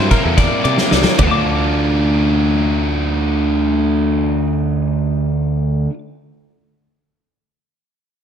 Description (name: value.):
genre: math rock and midwest emo.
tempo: free time.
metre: none.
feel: none.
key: D minor.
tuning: A4 = 440 Hz.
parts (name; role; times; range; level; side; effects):
twelve-string electric guitar; arpeggios; 0.0-6.0 s; A4 to D6; -21 LUFS; left 8 dB; spring reverb, slapback echo.
overdriven electric guitar; riff; 0.0-5.9 s; C3 to F4; -18 LUFS; right 1 dB; none.
modern bright picked electric bass; bass; 0.0-5.9 s; C2 to C3; -18 LUFS; equal; none.
loose indie drum kit; drums; 0.1-1.3 s; kick drum, ride cymbal, snare drum, toms; -16 LUFS; equal; none.
room: light reverb.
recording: none.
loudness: -14 LUFS.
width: side -8 dB against mid.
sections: 0.0-1.2 A section; 1.2-5.1 B section.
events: slowing down 0.0-1.2; drum fill 0.8-1.2.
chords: 0.0 C9; 1.2 Dm.